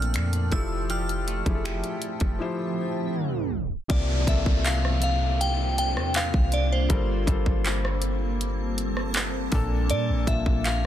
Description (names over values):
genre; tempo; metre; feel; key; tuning
contemporary R&B; 80 BPM; 4/4; straight; unclear; A4 = 440 Hz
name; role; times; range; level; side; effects
glassy synth bell; melody; 0.0-10.9 s; C5 to F6; -31 LUFS; left 1 dB; chorus, phaser, tape echo
felt-muted upright piano; accompaniment; 0.0-10.9 s; Bb2 to D5; -32 LUFS; left 4 dB; none
granular cloud pad; sustained chords; 0.0-10.9 s; F3 to A5; -34 LUFS; right 1 dB; built-in reverb
direct-recorded clean electric guitar; arpeggios; 0.0-4.5 s; Bb2 to G4; -35 LUFS; right 8 dB; analog chorus, tape echo
clean 808-style bass; bass; 0.0-10.9 s; F1 to Bb2; -26 LUFS; equal; none
trap drum kit; drums; 0.0-10.8 s; finger snaps, handclaps, hi-hat, kick drum, rim click; -26 LUFS; equal; soft clipping on snare
swell and downlifter; sound effects; 2.1-9.9 s; none; -36 LUFS; right 1 dB; none
room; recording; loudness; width
little or no reverb; dense, heavily limited modern master, tape stop; -23 LUFS; side -11 dB against mid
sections
0.0-3.9 A section; 3.9-10.9 B section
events
swell 2.1-3.9; drums muted 2.4-3.9; tape stop 3.1-3.9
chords
0.0 Bbmaj7; 0.5 Fmaj9; 3.9 C9sus4; 6.9 Gm11; 9.5 Bbmaj7